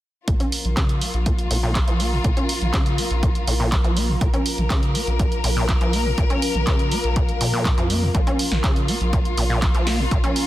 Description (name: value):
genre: acid house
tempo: 122 BPM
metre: 4/4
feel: straight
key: Bb minor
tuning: A4 = 444 Hz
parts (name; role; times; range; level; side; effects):
- warm studio string section; sustained chords; 0.3-10.5 s; F3 to Bb4; -28 LUFS; left 3 dB; sidechain pumping
- overdriven acid bass; riff; 0.3-10.5 s; Bb2 to Db4; -26 LUFS; equal; distortion, dub echo
- saturated sub bass; bass; 0.3-10.2 s; Bb1 to Bb2; -24 LUFS; equal; sidechain pumping
- electronic kick drum; drums; 0.3-10.2 s; none; -22 LUFS; equal; none
- punchy analog drum machine; drums; 0.3-10.5 s; handclaps, hi-hat, snare drum; -27 LUFS; right 1 dB; none
- deep dark ambient pad; texture; 1.2-10.5 s; F4 to Bb5; -32 LUFS; right 2 dB; chorus, built-in reverb, sidechain pumping
room: little or no reverb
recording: dense, heavily limited modern master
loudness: -18 LUFS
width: side -15 dB against mid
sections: 0.3-10.5 A section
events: filter sweep on acid bass 0.3-10.5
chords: 0.3 Bb5